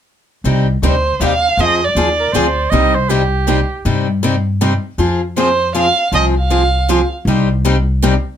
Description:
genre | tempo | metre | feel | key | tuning
acoustic string swing (jazz manouche) | 159 BPM | 3/4 | swing 62% on 8ths | C minor | A4 = 441 Hz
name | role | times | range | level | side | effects
picked steel-string acoustic guitar | accompaniment | 0.4-8.1 s | C3 to Ab4 | -18 LUFS | left 5 dB | none
upright bass | bass | 0.4-8.2 s | C2 to G2 | -17 LUFS | equal | none
picked steel-string acoustic guitar | accompaniment | 0.5-8.1 s | C3 to Ab4 | -22 LUFS | right 7 dB | none
warm violin | melody | 0.9-2.6, 5.4-7.1 s | C5 to F5 | -15 LUFS | right 3 dB | none
breathy soprano saxophone | second line | 2.2-3.9 s | G4 to Eb5 | -18 LUFS | right 4 dB | none
room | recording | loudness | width
moderate small room ambience, RT60 0.5 s | none | -12 LUFS | side -9 dB against mid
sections
0.5-8.4 A section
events
none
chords
0.5 Cm; 1.6 Fm; 2.7 Cm; 5.0 Fm; 7.3 Cm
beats
| 0.45 0.83 1.21 | 1.58 1.96 2.34 | 2.72 3.10 3.47 | 3.85 4.23 4.61 | 4.99 5.37 5.74 | 6.12 6.50 6.88 | 7.26 7.64 8.01

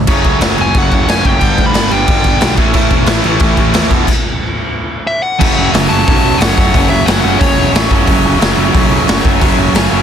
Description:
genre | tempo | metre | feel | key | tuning
punk rock | 180 BPM | 4/4 | straight | unclear | A4 = 443 Hz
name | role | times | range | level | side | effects
cranked stack guitar | riff | 0.0-10.0 s | F#2 to E4 | -17 LUFS | left 14 dB | overdrive
distorted electric guitar | riff | 0.0-10.0 s | E2 to A3 | -16 LUFS | right 14 dB | overdrive
overdriven picked electric bass | bass | 0.0-10.0 s | E1 to F#2 | -17 LUFS | equal | none
raw garage drum kit | drums | 0.1-9.8 s | crash cymbal, hi-hat, kick drum, snare drum | -13 LUFS | equal | none
dark smooth lead guitar | melody | 0.6-2.5, 5.1-7.7 s | C#5 to B5 | -16 LUFS | left 2 dB | overdrive
sludgy distorted guitar | riff | 2.7-10.0 s | F#2 to A3 | -19 LUFS | right 1 dB | overdrive
room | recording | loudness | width
little or no reverb | dense, heavily limited modern master | -9 LUFS | side -8 dB against mid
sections
0.1-5.4 A section; 5.4-10.0 B section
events
stop 4.1-5.4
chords
0.1 F#m; 1.4 G; 2.6 A; 3.9 E5; 5.4 F#m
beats
| 0.07 0.41 0.74 1.07 | 1.41 1.74 2.07 2.41 | 2.74 3.07 3.41 3.74 | 4.07 4.41 4.74 5.07 | 5.41 5.74 6.07 6.41 | 6.74 7.07 7.41 7.74 | 8.07 8.41 8.74 9.07 | 9.41 9.74

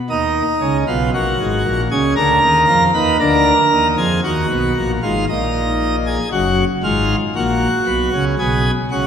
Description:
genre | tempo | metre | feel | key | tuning
classical, baroque-style 3-part fugue for pipe organ | 58 BPM | 4/4 | straight | unclear | A4 = 440 Hz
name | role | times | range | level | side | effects
pipe organ, plenum | solo | 0.1-9.1 s | F#1 to B4 | -14 LUFS | equal | none
room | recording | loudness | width
wet church reverb, RT60 2.8 s | none | -14 LUFS | side -8 dB against mid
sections
0.0-9.1 A section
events
none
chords
0.1 D#m; 2.2 A#7/D; 4.2 D#m; 6.3 F#maj9; 8.4 G#m/B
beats
| 0.11 1.14 2.18 3.21 | 4.25 5.29 6.32 7.36 | 8.38

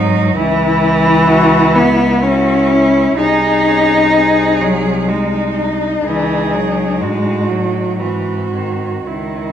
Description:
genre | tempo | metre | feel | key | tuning
classical, lyrical piece for cello ensemble | 54-65 BPM | 3/4 | rubato | C# minor | A4 = 435 Hz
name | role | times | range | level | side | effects
warm cello | melody | 0.0-9.5 s | B#3 to F#4 | -21 LUFS | left 6 dB | none
warm cello | second line | 0.0-9.5 s | D#4 to G#4 | -19 LUFS | right 6 dB | none
rich cello | accompaniment | 0.0-9.5 s | D#3 to D#4 | -14 LUFS | left 2 dB | none
rich cello | bass | 0.0-9.5 s | B#1 to A2 | -20 LUFS | right 2 dB | none
room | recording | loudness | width
wet recital hall reverb, RT60 1.4 s | none | -11 LUFS | side -9 dB against mid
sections
0.0-9.5 A section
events
none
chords
0.4 C#m; 3.2 G#/B#; 6.0 C#m; 7.0 F#m/A; 8.0 G#7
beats
| 0.36 1.28 2.24 | 3.18 4.13 5.08 | 6.04 7.01 8.00 | 9.06

